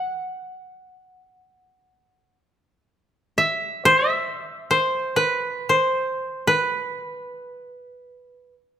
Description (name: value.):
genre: japanese traditional, Japanese chamber music.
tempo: free time.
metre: none.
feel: none.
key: unclear.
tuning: A4 = 440 Hz.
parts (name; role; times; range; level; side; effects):
koto; solo; 0.0-8.5 s; B4 to F#5; -20 LUFS; equal; none.
room: moderate recital hall reverb, RT60 1.7 s.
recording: none.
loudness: -20 LUFS.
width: side -10 dB against mid.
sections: 0.0-8.8 A section.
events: slowing down 4.8-8.8.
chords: none.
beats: free time.